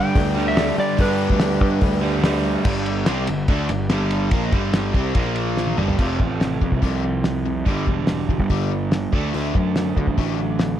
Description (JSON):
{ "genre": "classic rock", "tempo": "144 BPM", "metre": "4/4", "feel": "straight", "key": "G mixolydian", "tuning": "A4 = 437 Hz", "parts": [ { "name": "electric slide guitar", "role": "melody", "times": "0.0-2.2 s", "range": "B4 to G5", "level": "-25 LUFS", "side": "left 1 dB", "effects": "slapback echo" }, { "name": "dark upright piano", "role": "accompaniment", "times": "0.0-2.6 s", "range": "D4 to B4", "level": "-30 LUFS", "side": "right 4 dB", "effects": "none" }, { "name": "crunchy overdriven guitar", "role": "riff", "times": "0.0-2.7 s", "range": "G2 to G3", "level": "-27 LUFS", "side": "equal", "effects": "none" }, { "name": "overdriven electric guitar", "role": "riff", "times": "0.0-10.8 s", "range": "F2 to D4", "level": "-27 LUFS", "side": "left 11 dB", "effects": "spring reverb" }, { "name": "overdriven electric guitar", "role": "riff", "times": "0.0-10.8 s", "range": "F2 to D4", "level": "-25 LUFS", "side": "right 10 dB", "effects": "none" }, { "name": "fuzz picked electric bass", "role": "bass", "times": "0.0-10.8 s", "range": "E1 to G3", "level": "-24 LUFS", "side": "equal", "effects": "overdrive" }, { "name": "cloth-damped thuddy drum kit", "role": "drums", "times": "0.2-10.7 s", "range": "crash cymbal, hi-hat, kick drum, ride cymbal, snare drum, toms", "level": "-21 LUFS", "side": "equal", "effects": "none" }, { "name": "cowbell", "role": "percussion", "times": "0.2-2.3 s", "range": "none", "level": "-34 LUFS", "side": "left 11 dB", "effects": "none" } ], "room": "light reverb", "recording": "none", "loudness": "-18 LUFS", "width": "side -11 dB against mid", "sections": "0.0-2.7 A section; 2.7-6.0 B section; 6.0-10.8 C section", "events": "drum fill 5.6-6.0", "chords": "0.0 G; 2.7 G5; 5.2 Bb5; 5.8 G5; 6.0 F; 7.7 G5; 9.1 D" }